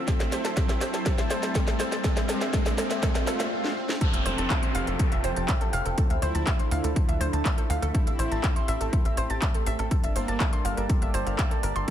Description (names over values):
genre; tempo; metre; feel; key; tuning
melodic techno; 122 BPM; 4/4; straight; unclear; A4 = 444 Hz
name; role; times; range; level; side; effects
soft supersaw; melody; 0.0-11.9 s; Bb3 to E4; -35 LUFS; right 1 dB; vintage 12-bit sampler grit, sidechain pumping, ping-pong delay
warm analog pad; sustained chords; 0.0-11.9 s; D3 to C5; -36 LUFS; equal; chorus, sidechain pumping
riser, swell and downlifter; sound effects; 0.0-7.9 s; none; -34 LUFS; left 1 dB; none
warbly tape-like pad; texture; 0.0-11.9 s; F3 to A5; -38 LUFS; right 1 dB; chorus, built-in reverb, sidechain pumping
woody wave-folded pluck; arpeggios; 0.1-11.9 s; A4 to A6; -33 LUFS; right 1 dB; chorus, sidechain pumping, ping-pong delay
electronic kick drum; drums; 0.1-11.9 s; none; -25 LUFS; equal; overdrive, studio reverb
techno drum kit; drums; 0.1-11.9 s; handclaps, hi-hat, snare drum; -32 LUFS; equal; overdrive, studio reverb
tight sequencer bass; bass; 4.1-11.9 s; F1 to D2; -29 LUFS; equal; sidechain pumping
room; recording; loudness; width
light reverb, digital ambience; none; -23 LUFS; side -10 dB against mid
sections
0.0-4.0 A section; 4.0-11.9 B section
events
build-up 0.0-4.0; drum fill 0.0-3.5, 3.6-4.0; riser 0.0-3.5; swell 3.0-4.0; break 3.5-4.0; drop 4.0-11.9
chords
0.1 Am; 2.0 Gm; 4.0 Fadd9; 6.0 Dm; 7.9 Am7; 9.9 Gm